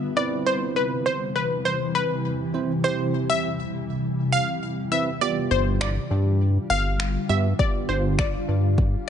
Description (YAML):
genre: dance-pop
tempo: 101 BPM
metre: 4/4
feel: straight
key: C major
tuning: A4 = 439 Hz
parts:
  - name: analog pluck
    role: melody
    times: 0.0-8.5 s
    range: B4 to F5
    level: -25 LUFS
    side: left 1 dB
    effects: chorus, ping-pong delay
  - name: granular cloud pad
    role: sustained chords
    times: 0.0-9.1 s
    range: C3 to F4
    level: -28 LUFS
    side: left 1 dB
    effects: built-in reverb, sidechain pumping
  - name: bell-like tine electric piano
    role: accompaniment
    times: 0.2-8.2 s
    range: B3 to C5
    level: -30 LUFS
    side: right 8 dB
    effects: sidechain pumping
  - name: chorused synth bass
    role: bass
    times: 5.5-9.0 s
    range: G1 to G2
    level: -22 LUFS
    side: equal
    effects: sidechain pumping
  - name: deep house drum kit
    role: drums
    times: 5.8-8.9 s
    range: finger snaps, kick drum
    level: -24 LUFS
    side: equal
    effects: overdrive
room: light reverb, digital ambience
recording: nothing above 10.4 kHz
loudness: -21 LUFS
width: side -8 dB against mid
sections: 0.0-9.1 A section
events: none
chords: 0.2 Cmaj7; 5.2 G7